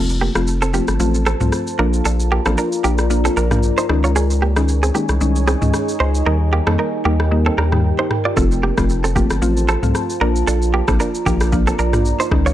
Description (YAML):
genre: afrobeats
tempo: 114 BPM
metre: 4/4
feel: swing 55% on 16ths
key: unclear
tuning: A4 = 440 Hz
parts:
  - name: mallet-like synth pluck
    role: accompaniment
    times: 0.0-12.5 s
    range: Eb3 to F4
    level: -22 LUFS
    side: left 2 dB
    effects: chorus
  - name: deep dark ambient pad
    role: sustained chords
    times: 0.4-12.5 s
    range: Eb4 to Bb5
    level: -24 LUFS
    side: right 1 dB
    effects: chorus, built-in reverb, sidechain pumping
  - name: direct-recorded clean electric guitar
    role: riff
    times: 0.0-12.5 s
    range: Bb3 to D5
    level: -22 LUFS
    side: right 4 dB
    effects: tape echo
  - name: saturated sub bass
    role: bass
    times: 0.0-12.5 s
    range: F1 to F2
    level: -18 LUFS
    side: equal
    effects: none
  - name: afro-pop drum kit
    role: drums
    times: 0.1-12.5 s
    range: kick drum, rim click, shaker, toms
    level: -23 LUFS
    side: equal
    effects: none
room: little or no reverb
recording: dry, gritty hardware recording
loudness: -15 LUFS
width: side -12 dB against mid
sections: 0.0-12.5 A section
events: break 0.0-8.4; hi-hats muted 6.3-8.4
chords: 0.0 F; 1.8 Bb; 3.9 Dbsus2; 6.3 Eb; 8.4 F; 10.2 Bb